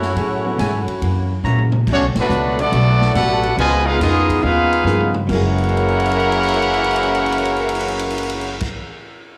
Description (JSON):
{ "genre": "jazz, big band swing", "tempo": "140 BPM", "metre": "4/4", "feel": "swing 67% on 8ths", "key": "unclear", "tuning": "A4 = 440 Hz", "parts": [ { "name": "mellow saxophone section", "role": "melody", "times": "0.0-1.4 s", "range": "E4 to F#5", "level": "-29 LUFS", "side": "equal", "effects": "none" }, { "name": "warm trombone section", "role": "second line", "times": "0.0-8.6 s", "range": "F#2 to F#4", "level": "-24 LUFS", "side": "equal", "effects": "analog delay" }, { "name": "hollow-body jazz guitar", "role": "accompaniment", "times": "0.0-8.8 s", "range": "F#2 to A#4", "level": "-30 LUFS", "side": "equal", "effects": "none" }, { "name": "upright bass", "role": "bass", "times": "0.0-8.6 s", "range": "F#1 to A#2", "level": "-23 LUFS", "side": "equal", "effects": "none" }, { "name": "swinging big-band drum kit", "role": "drums", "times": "0.0-8.7 s", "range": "crash cymbal, hi-hat, kick drum, ride cymbal, snare drum, toms", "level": "-30 LUFS", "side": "equal", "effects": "none" }, { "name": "dark upright piano", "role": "accompaniment", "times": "0.4-0.6, 4.9-8.9 s", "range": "F#2 to C#7", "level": "-30 LUFS", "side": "equal", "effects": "none" }, { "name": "warm trumpet section", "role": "stabs", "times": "0.6-1.6 s", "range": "F#4 to A#5", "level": "-29 LUFS", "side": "equal", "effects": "none" }, { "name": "bright trumpet section", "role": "melody", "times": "1.9-8.6 s", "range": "A3 to G#5", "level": "-20 LUFS", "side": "equal", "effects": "none" } ], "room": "light reverb, small room ambience", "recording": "dry, gritty hardware recording, small room reverb", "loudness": "-17 LUFS", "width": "mono", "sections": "0.0-1.9 A section; 1.9-5.3 B section; 5.3-8.7 C section", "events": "drum fill 1.4-1.9, 4.9-5.3, 5.5-8.6; band accent 2.1", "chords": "0.0 F#m9; 1.0 F#7; 1.9 Bm7; 3.6 C#13; 5.3 F#9" }